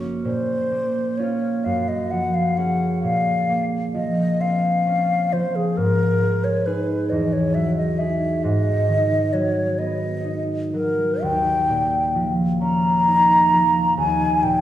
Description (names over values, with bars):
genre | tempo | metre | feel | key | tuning
classical, impressionist duo for flute and harp | 44 BPM (dotted quarters) | 6/8 | rubato | Bb minor | A4 = 441 Hz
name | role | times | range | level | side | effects
concert harp | accompaniment | 0.0-14.6 s | Gb1 to Bb5 | -22 LUFS | equal | none
mellow hollow concert flute | melody | 0.2-14.6 s | Ab4 to Bb5 | -21 LUFS | left 1 dB | none
room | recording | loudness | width
wet recital hall reverb, RT60 1.5 s | heard from further back in the room | -18 LUFS | side -12 dB against mid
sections
0.2-14.6 A section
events
none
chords
0.2 Bbmadd9; 1.6 Gbmaj9; 3.0 Bbm9; 5.8 Absus2; 7.1 Emaj9; 8.4 Abm7; 11.2 Eb9